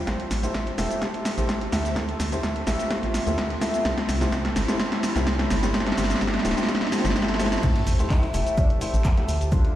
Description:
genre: piano house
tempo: 127 BPM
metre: 4/4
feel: straight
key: A minor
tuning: A4 = 439 Hz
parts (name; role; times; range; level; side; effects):
- riser and sub drop; sound effects; 0.0-9.5 s; none; -34 LUFS; right 1 dB; none
- ethereal airy pad; texture; 0.0-9.8 s; F3 to C6; -36 LUFS; equal; ensemble chorus, built-in reverb, sidechain pumping
- clear grand piano; riff; 0.1-9.8 s; D3 to E5; -28 LUFS; left 1 dB; sidechain pumping, low-pass filter, digital delay
- organ-like FM bass; bass; 0.1-9.7 s; D1 to D2; -27 LUFS; equal; sidechain pumping
- electronic kick drum; drums; 0.1-9.6 s; none; -24 LUFS; equal; overdrive, high-pass filter on kick
- punchy analog drum machine; drums; 0.1-9.7 s; cabasa, crash cymbal, handclaps, hi-hat, snare drum; -26 LUFS; equal; none
- breakbeat sampler-style drum kit; drums; 7.6-9.6 s; hi-hat, shaker, snare drum; -44 LUFS; right 1 dB; high-pass filter on perc, high-pass filter on hats, high-pass filter on snare
- breathy tenor saxophone; melody; 8.1-8.9 s; D4 to E4; -32 LUFS; left 2 dB; digital delay
room: wet lush hall reverb, RT60 1.7 s, digital ambience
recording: played on a big sound system in a bare room, large studio reverb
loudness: -21 LUFS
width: side -13 dB against mid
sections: 0.0-7.6 A section; 7.6-9.8 B section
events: build-up 0.0-7.6; drum fill 0.0-7.6; drop 7.6-9.8; impact 7.6-9.5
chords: 0.1 Am7; 2.0 Dm9; 3.6 Cmaj7; 5.5 G7sus4; 7.6 Am7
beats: | 0.07 0.54 1.02 1.49 | 1.96 2.43 2.91 3.38 | 3.85 4.32 4.80 5.27 | 5.74 6.21 6.69 7.16 | 7.63 8.10 8.58 9.05 | 9.52

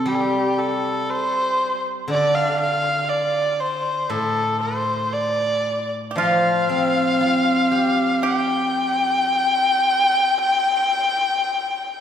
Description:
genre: chinese traditional, Chinese chamber ensemble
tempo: 60 BPM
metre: 2/4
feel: rubato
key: unclear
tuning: A4 = 440 Hz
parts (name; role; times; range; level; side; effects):
- rich erhu; melody; 0.0-12.0 s; G4 to G5; -20 LUFS; left 1 dB; none
- steel-string zither; accompaniment; 0.0-9.7 s; A2 to G4; -23 LUFS; equal; none
- pipa; second line; 6.1-12.0 s; F4 to G4; -26 LUFS; right 3 dB; none
room: wet concert hall reverb, RT60 1.9 s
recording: heard from further back in the room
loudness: -18 LUFS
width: side -8 dB against mid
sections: 0.0-12.0 A section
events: none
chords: none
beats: | 0.08 1.10 | 2.10 3.10 | 4.11 5.14 | 6.18 7.21 | 8.23 9.22 | 10.21 11.19

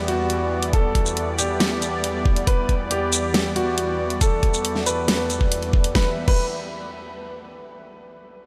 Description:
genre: heavy wobble dubstep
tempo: 138 BPM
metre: 4/4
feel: half-time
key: E minor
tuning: A4 = 440 Hz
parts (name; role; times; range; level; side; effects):
- lush unison pad; sustained chords; 0.0-6.2 s; E2 to B5; -29 LUFS; equal; chorus, sidechain pumping
- clear grand piano; melody; 0.1-6.4 s; F#4 to B4; -28 LUFS; equal; diffuse ambient delay
- dubstep drum kit; drums; 0.1-6.4 s; crash cymbal, hi-hat, shaker, snare drum; -28 LUFS; equal; none
- electronic kick drum; drums; 0.7-6.4 s; none; -22 LUFS; equal; none
room: moderate huge ambient reverb, RT60 7.7 s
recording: dreamy mix soaked in reverb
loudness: -21 LUFS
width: mono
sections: 0.0-6.0 A section; 6.0-7.7 B section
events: none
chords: 0.0 Em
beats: 0.30 | 0.73 1.17 1.60 2.04 | 2.47 2.91 3.34 3.78 | 4.21 4.65 5.08 5.52 | 5.95 6.39

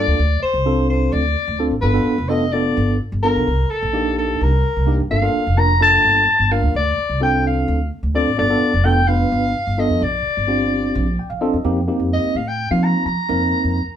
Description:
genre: electric jazz fusion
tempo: 256 BPM (eighths)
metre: 7/8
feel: straight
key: unclear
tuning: A4 = 441 Hz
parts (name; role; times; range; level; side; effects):
- mellow soprano saxophone; melody; 0.0-14.0 s; A4 to Bb5; -19 LUFS; left 2 dB; none
- tine electric piano; accompaniment; 0.0-13.8 s; Bb3 to G5; -20 LUFS; right 1 dB; fast stereo tremolo
- upright bass; bass; 0.0-13.9 s; F1 to F3; -20 LUFS; equal; none
room: moderate studio reverb, RT60 0.6 s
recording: band playing live in one room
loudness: -15 LUFS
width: side -9 dB against mid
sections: 0.0-11.7 A section; 11.7-14.0 B section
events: tine electric piano fill 11.0-11.7; soprano saxophone solo 11.7-14.0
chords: 0.2 Dm7; 1.8 G9; 3.5 Cm9; 5.1 Gm9; 6.7 Dm7; 8.4 G9; 10.0 Bb6; 11.7 F9sus4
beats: | 0.19 0.42 0.66 0.89 1.13 1.36 1.59 | 1.83 2.06 2.30 2.53 2.76 3.00 3.23 | 3.47 3.70 3.93 4.17 4.40 4.64 4.87 | 5.11 5.34 5.57 5.81 6.04 6.28 6.51 | 6.74 6.98 7.21 7.45 7.68 7.91 8.15 | 8.38 8.62 8.85 9.08 9.32 9.55 9.79 | 10.02 10.25 10.49 10.72 10.96 11.19 11.42 | 11.66 11.89 12.13 12.36 12.59 12.83 13.06 | 13.30 13.53 13.76

